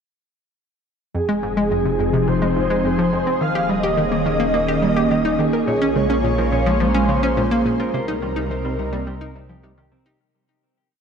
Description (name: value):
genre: ambient, sequencer-driven space music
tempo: 106 BPM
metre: 4/4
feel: straight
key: unclear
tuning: A4 = 439 Hz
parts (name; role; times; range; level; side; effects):
- breathy flute-like synth lead; melody; 1.1-9.6 s; Ab4 to F5; -23 LUFS; right 1 dB; tremolo, ensemble chorus, ping-pong delay
- phased analog pad; sustained chords; 1.4-10.2 s; C3 to Bb4; -22 LUFS; equal; phaser, chorus
- analog pluck; riff; 1.1-10.2 s; F2 to Bb4; -22 LUFS; left 1 dB; chorus, ping-pong delay
- round analog bass; bass; 1.1-10.2 s; Eb1 to C2; -28 LUFS; equal; none
- mellow electric guitar; arpeggios; 5.7-10.2 s; G3 to Db5; -25 LUFS; right 2 dB; auto-pan, ping-pong delay
room: wet cathedral reverb, RT60 5.4 s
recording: in a vast, echoing space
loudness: -17 LUFS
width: side -6 dB against mid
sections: 1.1-10.2 A section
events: fade-out 7.2-10.2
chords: 1.1 Fm7; 3.4 Eb7sus4; 5.7 Bbm7; 7.9 Cm7